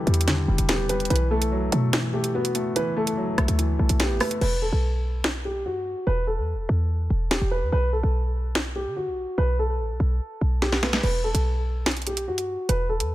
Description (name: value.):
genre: hip hop, drill.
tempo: 145 BPM.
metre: 4/4.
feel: half-time.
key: E minor.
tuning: A4 = 440 Hz.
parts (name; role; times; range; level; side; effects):
dark concert grand piano; melody; 0.0-13.1 s; F#4 to B4; -28 LUFS; equal; low-pass filter, ping-pong delay.
felt-muted upright piano; accompaniment; 0.0-4.4 s; D3 to B3; -27 LUFS; left 2 dB; low-pass filter.
short 808-style bass; bass; 0.1-13.1 s; E1 to D3; -24 LUFS; equal; none.
drill drum kit; drums; 0.1-13.1 s; crash cymbal, hi-hat, rim click, snare drum; -26 LUFS; equal; none.
room: studio reverb.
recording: none.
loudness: -22 LUFS.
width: side -15 dB against mid.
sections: 0.0-4.4 A section; 4.4-13.1 B section.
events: hi-hats muted 4.4-11.0; drum fill 10.6-11.0.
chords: 0.0 Em7; 1.1 B7sus4; 4.4 E5; 7.7 B5; 11.0 Em.